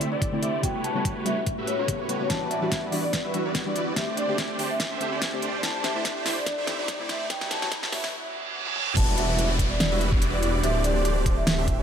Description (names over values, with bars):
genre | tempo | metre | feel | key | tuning
future bass | 144 BPM | 4/4 | swing 55% on 16ths, half-time | E minor | A4 = 440 Hz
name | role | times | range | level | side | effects
soft round pluck | accompaniment | 0.0-8.0 s | C#3 to G4 | -33 LUFS | left 2 dB | chorus, sidechain pumping, digital delay
shimmering ambient pad | sustained chords | 0.0-11.8 s | D2 to G4 | -38 LUFS | equal | none
supersaw chords | riff | 0.0-11.8 s | G3 to E5 | -30 LUFS | right 1 dB | phaser, sidechain pumping, low-pass filter
pop drum kit | drums | 0.0-11.8 s | crash cymbal, hi-hat, snare drum, toms | -29 LUFS | equal | none
riser, reverse cymbal and downlifter | sound effects | 0.3-11.8 s | none | -35 LUFS | right 2 dB | none
vibraphone with soft mallets | melody | 0.1-11.8 s | C#5 to A5 | -31 LUFS | equal | sidechain pumping, digital delay
electronic kick drum | drums | 0.2-11.8 s | none | -26 LUFS | equal | none
wide detuned saw bass | bass | 9.0-11.8 s | D1 to E1 | -26 LUFS | equal | chorus, tube saturation, sidechain pumping
room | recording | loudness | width
light reverb, digital ambience | high-pass filter | -23 LUFS | side -8 dB against mid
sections
0.0-9.0 A section; 9.0-11.8 B section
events
build-up 0.0-9.0; filter sweep on supersaw synth 0.0-9.0; filter sweep on ambient pad 0.0-9.0; filter sweep 0.0-9.0; riser 0.3-8.1; drum fill 2.3-8.1, 8.7-9.0; reverse cymbal 8.1-9.0; drop 9.0-11.8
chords
0.0 C69; 0.6 A13; 2.3 Em9; 4.0 D7sus4; 5.6 C69; 7.3 A13; 9.0 Em9; 10.6 D7sus4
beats
0.22 | 0.63 1.05 1.47 1.88 | 2.30 2.72 3.13 3.55 | 3.97 4.38 4.80 5.22 | 5.63 6.05 6.47 6.88 | 7.30 7.72 8.13 8.55 | 8.97 9.38 9.80 10.22 | 10.63 11.05 11.47